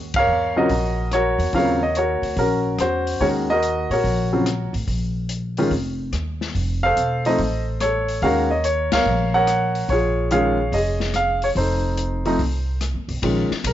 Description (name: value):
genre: jazz piano trio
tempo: 144 BPM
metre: 4/4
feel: swing 67% on 8ths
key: Bb minor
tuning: A4 = 441 Hz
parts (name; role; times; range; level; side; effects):
- upright bass; bass; 0.0-13.7 s; E1 to Bb2; -24 LUFS; equal; none
- open jazz drum kit; drums; 0.1-13.7 s; hi-hat, kick drum, ride cymbal, rim click, snare drum; -30 LUFS; left 4 dB; none
- warm baby grand piano; melody; 0.2-13.7 s; Db3 to Gb5; -19 LUFS; equal; none
room: small room ambience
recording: 1960s-style stereo, nothing above 7.6 kHz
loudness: -18 LUFS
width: side -12 dB against mid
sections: 0.0-13.2 A section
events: band accent 0.1, 8.8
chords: 0.0 Ebm7; 4.9 Bb5; 6.5 F7; 8.2 Ebm7; 9.9 Bbm7; 11.6 F7; 13.2 Bbm7